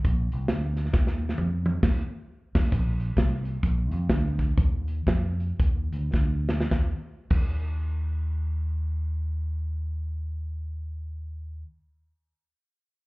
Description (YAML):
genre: uptempo gospel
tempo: 101-134 BPM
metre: 4/4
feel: swing 62% on 8ths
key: unclear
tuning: A4 = 440 Hz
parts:
  - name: fingered electric bass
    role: bass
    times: 0.0-11.6 s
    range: Bb1 to F2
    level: -27 LUFS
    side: equal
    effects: none
  - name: modern studio drum kit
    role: drums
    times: 0.0-7.5 s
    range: crash cymbal, hi-hat, kick drum, snare drum, toms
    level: -25 LUFS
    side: equal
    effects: none
room: little or no reverb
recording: heard muffled through a wall, club reverb, EQ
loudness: -24 LUFS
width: side -22 dB against mid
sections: 0.0-2.7 A section; 2.7-6.7 B section; 6.7-11.5 C section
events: drum fill 0.9-2.7, 6.1-6.7; band accent 1.8-2.7; slowing down 2.7-6.7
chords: none